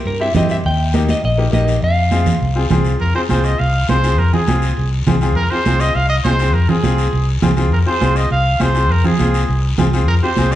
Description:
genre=latin, cumbia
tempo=204 BPM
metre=4/4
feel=straight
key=F minor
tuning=A4 = 440 Hz
part: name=clean electric guitar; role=melody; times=0.1-2.7 s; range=Bb4 to G5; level=-20 LUFS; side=equal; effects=spring reverb
part: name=fingered electric bass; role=bass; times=0.1-10.6 s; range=Bb1 to G2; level=-16 LUFS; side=equal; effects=none
part: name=guiro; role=percussion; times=0.1-10.6 s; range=none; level=-30 LUFS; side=left 6 dB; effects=none
part: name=bright upright piano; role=accompaniment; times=0.2-10.6 s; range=Bb3 to Ab4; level=-21 LUFS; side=left 2 dB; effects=none
part: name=congas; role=percussion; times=0.3-10.5 s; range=none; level=-20 LUFS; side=right 3 dB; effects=none
part: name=clear trumpet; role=second line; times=3.0-10.6 s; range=Ab4 to F5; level=-20 LUFS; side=right 1 dB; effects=none
room=moderate large studio reverb, RT60 0.9 s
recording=heard from further back in the room, nothing above 10.4 kHz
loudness=-13 LUFS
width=side -13 dB against mid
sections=0.0-3.0 A section; 3.0-10.6 B section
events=trumpet solo 3.0-10.6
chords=0.0 C; 0.6 Eb; 1.8 Fm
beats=0.05 0.35 | 0.64 0.94 1.23 1.53 | 1.82 2.12 2.41 2.71 | 3.00 3.30 3.59 3.89 | 4.18 4.48 4.77 5.07 | 5.36 5.66 5.95 6.25 | 6.54 6.84 7.13 7.42 | 7.72 8.01 8.31 8.60 | 8.90 9.19 9.49 9.78 | 10.08 10.37

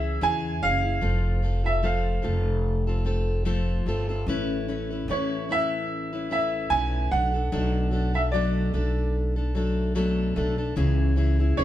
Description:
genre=acoustic pop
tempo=74 BPM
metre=4/4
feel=swing 55% on 16ths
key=unclear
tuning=A4 = 440 Hz
part: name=clear upright piano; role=melody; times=0.0-11.6 s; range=C#5 to G#5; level=-27 LUFS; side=right 2 dB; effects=none
part: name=fingerpicked plugged-in steel-string acoustic guitar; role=accompaniment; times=0.0-11.6 s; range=B2 to B4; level=-28 LUFS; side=left 2 dB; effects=none
part: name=upright bass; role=bass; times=0.0-11.6 s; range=F1 to E2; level=-26 LUFS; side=equal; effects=none
room=moderate stone room reverb, RT60 1.1 s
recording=band playing live in one room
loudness=-23 LUFS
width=side -12 dB against mid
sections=0.0-11.6 A section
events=none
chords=0.0 C#m; 1.0 F; 4.3 Aadd9; 7.1 Bm7; 10.8 C#m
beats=0.21 | 1.02 1.84 2.65 3.46 | 4.28 5.09 5.90 6.71 | 7.52 8.33 9.14 9.96 | 10.77 11.58

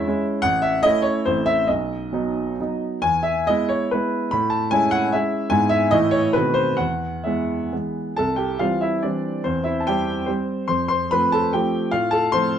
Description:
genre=classical, romantic triple-time dance for piano with dotted rhythms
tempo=121-162 BPM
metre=3/4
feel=rubato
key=E major, C major from 8.2 s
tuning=A4 = 440 Hz
part: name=warm baby grand piano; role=solo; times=0.0-12.6 s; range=A1 to C6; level=-19 LUFS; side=equal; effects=none
room=light reverb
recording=dark, warm production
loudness=-19 LUFS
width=side -9 dB against mid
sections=0.0-8.2 A section; 8.2-12.6 B section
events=none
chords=0.4 A; 1.3 Am; 1.7 B; 3.0 E; 4.3 Amaj7; 5.5 E/G#; 5.9 A; 6.3 B7b9; 6.8 E; 8.2 C; 9.4 C/E; 10.7 F; 11.9 F/A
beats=0.06 | 0.44 0.84 1.26 | 1.67 2.12 2.58 | 3.02 3.46 3.90 | 4.30 4.71 5.13 | 5.51 5.91 6.34 | 6.78 7.25 7.72 | 8.17 8.61 9.04 | 9.44 9.86 10.28 | 10.69 11.11 11.53 | 11.93 12.33

